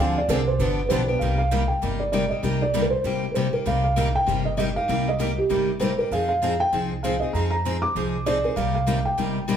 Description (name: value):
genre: acoustic string swing (jazz manouche)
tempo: 196 BPM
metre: 4/4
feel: swing 60% on 8ths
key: C minor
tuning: A4 = 440 Hz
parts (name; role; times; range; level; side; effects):
- felt-muted upright piano; melody; 0.0-9.6 s; G4 to D6; -24 LUFS; right 2 dB; none
- picked steel-string acoustic guitar; accompaniment; 0.0-9.6 s; C3 to Ab4; -27 LUFS; left 5 dB; none
- picked steel-string acoustic guitar; accompaniment; 0.0-9.6 s; C3 to Ab4; -30 LUFS; right 4 dB; none
- upright bass; bass; 0.0-9.6 s; G1 to F2; -27 LUFS; right 1 dB; none
room: moderate large studio reverb, RT60 0.8 s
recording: band playing live in one room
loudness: -21 LUFS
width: side -8 dB against mid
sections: 0.0-1.2 A section; 1.2-9.6 B section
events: felt piano solo 0.0-1.2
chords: 0.0 Dm7b5; 0.6 G7; 1.2 Cm7; 6.1 Fm7; 8.6 Cm7